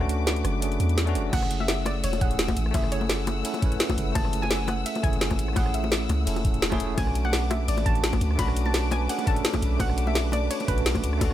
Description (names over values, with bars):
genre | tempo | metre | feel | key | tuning
liquid drum and bass | 170 BPM | 4/4 | swing 53% on 16ths | F# minor | A4 = 440 Hz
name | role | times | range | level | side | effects
soft round pluck | melody | 0.0-11.3 s | A4 to B5 | -33 LUFS | equal | chorus, tape echo
barky tine electric piano | accompaniment | 0.0-11.3 s | A3 to B4 | -30 LUFS | right 1 dB | fast stereo tremolo, tape echo
rich studio string section | sustained chords | 0.0-11.3 s | A3 to E6 | -36 LUFS | left 2 dB | none
long sustained 808-style bass | bass | 0.0-11.3 s | E1 to E2 | -27 LUFS | equal | none
garage drum kit | drums | 0.0-11.3 s | crash cymbal, hi-hat, ride cymbal, rim click, snare drum | -29 LUFS | equal | none
electronic kick drum | drums | 1.3-11.3 s | none | -26 LUFS | equal | none
bongos | percussion | 1.3-11.3 s | none | -34 LUFS | left 5 dB | none
room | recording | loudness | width
digital ambience | none | -22 LUFS | side -12 dB against mid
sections
0.0-11.3 A section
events
kick drops out 0.6-1.3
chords
0.0 Bm7; 1.3 F#m7; 7.0 Bm7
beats
0.27 0.62 0.98 | 1.33 1.68 2.04 2.39 | 2.74 3.09 3.45 3.80 | 4.15 4.51 4.86 5.21 | 5.57 5.92 6.27 6.62 | 6.98 7.33 7.68 8.04 | 8.39 8.74 9.09 9.45 | 9.80 10.15 10.51 10.86 | 11.21